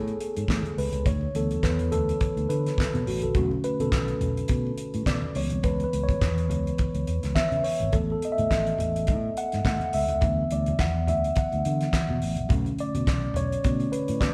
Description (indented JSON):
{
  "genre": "disco",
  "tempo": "105 BPM",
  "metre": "4/4",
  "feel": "swing 56% on 16ths",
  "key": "unclear",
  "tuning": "A4 = 440 Hz",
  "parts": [
    { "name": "mellow tine electric piano", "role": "accompaniment", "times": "0.0-14.3 s", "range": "C#3 to F#5", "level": "-30 LUFS", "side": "equal", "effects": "none" },
    { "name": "fingered electric bass", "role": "bass", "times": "0.0-14.3 s", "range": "G#1 to D3", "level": "-31 LUFS", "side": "equal", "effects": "none" },
    { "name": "damped 70s drum kit", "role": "drums", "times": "0.1-14.3 s", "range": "handclaps, hi-hat, kick drum, snare drum", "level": "-30 LUFS", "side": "equal", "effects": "none" },
    { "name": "congas", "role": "percussion", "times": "0.5-14.3 s", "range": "none", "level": "-38 LUFS", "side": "equal", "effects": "none" }
  ],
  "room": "wet large studio reverb, RT60 1.0 s",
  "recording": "band playing live in one room",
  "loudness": "-26 LUFS",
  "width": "mono",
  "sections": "0.0-14.3 A section",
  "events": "tine electric piano solo 0.0-14.3",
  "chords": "0.0 Amaj7; 1.1 D6; 3.4 Bm7; 5.4 C#m7; 7.9 Amaj7; 10.2 D6; 12.5 Bm7"
}